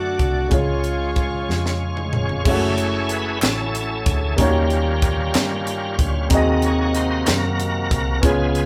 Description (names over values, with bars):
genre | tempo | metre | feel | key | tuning
slow gospel | 62 BPM (dotted quarters) | 6/8 | straight | unclear | A4 = 440 Hz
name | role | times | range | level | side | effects
breathy alto saxophone | melody | 0.0-2.1 s | E#4 to F#4 | -28 LUFS | equal | none
clear baby grand piano | accompaniment | 0.0-8.7 s | C#3 to D#5 | -25 LUFS | equal | none
bright tonewheel organ | sustained chords | 0.0-8.7 s | B#2 to D5 | -28 LUFS | equal | fast rotary speaker, overdrive, chorus vibrato
dark studio string section | sustained chords | 0.0-2.4 s | C#5 to D6 | -39 LUFS | equal | none
hollow-body short-scale fingered electric bass | bass | 0.0-8.7 s | E#1 to G2 | -26 LUFS | equal | none
crisp fusion drum kit | drums | 0.2-8.7 s | crash cymbal, hi-hat, kick drum, snare drum, toms | -24 LUFS | equal | none
group handclap | percussion | 3.4-7.6 s | none | -31 LUFS | equal | none
room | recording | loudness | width
light reverb | band playing live in one room | -20 LUFS | mono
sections
0.0-2.5 A section; 2.5-8.7 B section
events
drum fill 1.5-2.5; tonewheel organ solo 2.5-8.7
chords
0.0 D; 0.5 C#; 2.5 F#m7; 4.4 D#7; 6.3 G#7/D#